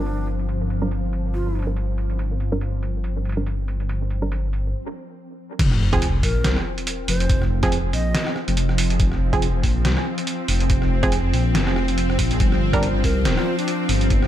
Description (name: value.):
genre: deep dubstep.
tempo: 141 BPM.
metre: 4/4.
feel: swing 56% on 16ths, half-time.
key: unclear.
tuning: A4 = 440 Hz.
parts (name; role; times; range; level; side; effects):
breathy bright low ney; melody; 0.0-1.7, 6.2-8.4, 13.0-13.9 s; D4 to Eb5; -32 LUFS; left 1 dB; dub echo.
bowed-like drone; sustained chords; 0.0-14.3 s; F3 to C4; -27 LUFS; equal; built-in reverb.
filtered dub chord stab; stabs; 0.0-12.9 s; F3 to Bb4; -28 LUFS; right 3 dB; chorus, dub echo.
dark detuned saw bass; bass; 0.0-14.3 s; D1 to C2; -22 LUFS; equal; none.
trip hop sampler-style drum kit; drums; 0.1-14.3 s; crash cymbal, hi-hat, rim click, snare drum; -27 LUFS; equal; low-pass filter on hats, low-pass filter on cymbals, low-pass filter on snare.
electronic kick drum; drums; 5.6-14.2 s; none; -22 LUFS; equal; none.
sub drop; sound effects; 5.6-7.3 s; none; -25 LUFS; equal; none.
room: digital ambience.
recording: none.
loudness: -19 LUFS.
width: side -12 dB against mid.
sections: 0.0-5.6 A section; 5.6-14.3 B section.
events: break 4.7-5.6; drop 5.6-14.3; impact 5.6-7.3.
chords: 0.0 N.C.; 5.6 F5; 12.4 G5.